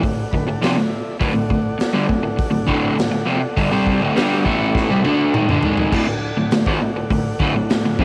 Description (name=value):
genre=garage rock duo or trio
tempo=102 BPM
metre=4/4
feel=straight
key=D major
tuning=A4 = 439 Hz
part: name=combo organ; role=sustained chords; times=0.0-8.0 s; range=A4 to B5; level=-31 LUFS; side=equal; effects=cassette tape
part: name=crunchy overdriven guitar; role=riff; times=0.0-8.0 s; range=D2 to D4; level=-20 LUFS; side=equal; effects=cassette tape
part: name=raw garage drum kit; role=drums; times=0.0-8.0 s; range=crash cymbal, hi-hat, kick drum, snare drum, toms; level=-24 LUFS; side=equal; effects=cassette tape
room=light reverb, small room reverb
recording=home recording on cassette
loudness=-19 LUFS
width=mono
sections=0.0-5.9 A section; 5.9-8.0 B section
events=transistor combo organ fill 0.0-1.2; drum fill 4.7-5.9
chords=0.0 D